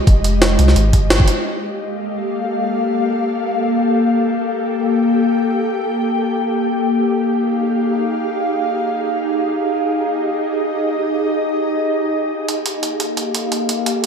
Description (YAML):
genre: liquid drum and bass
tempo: free time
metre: none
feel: none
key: G phrygian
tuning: A4 = 440 Hz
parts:
  - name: ethereal airy pad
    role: sustained chords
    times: 0.0-14.1 s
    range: Ab3 to G5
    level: -17 LUFS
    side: left 1 dB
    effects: ensemble chorus, built-in reverb, sidechain pumping
  - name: warm sub bass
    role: bass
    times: 0.1-1.3 s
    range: F1 to C2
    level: -15 LUFS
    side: equal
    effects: none
  - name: electronic kick drum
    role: drums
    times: 0.1-1.3 s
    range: none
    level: -13 LUFS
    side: equal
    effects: none
  - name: jungle sampler-style drum kit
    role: drums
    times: 0.1-1.4, 12.5-14.1 s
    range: hi-hat, snare drum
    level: -20 LUFS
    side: right 1 dB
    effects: high-pass filter on hats, high-pass filter on snare, high-pass filter on room
room: wet recital hall reverb, RT60 1.6 s, digital ambience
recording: dark, warm production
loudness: -16 LUFS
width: side -6 dB against mid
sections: 0.0-1.5 A section; 1.5-12.5 B section; 12.5-14.1 C section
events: band accent 1.1; build-up 12.5-14.1; filter sweep on ambient pad 12.5-14.1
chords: 0.0 Fm9; 1.5 Gm9; 7.0 Fm9; 12.5 Gm9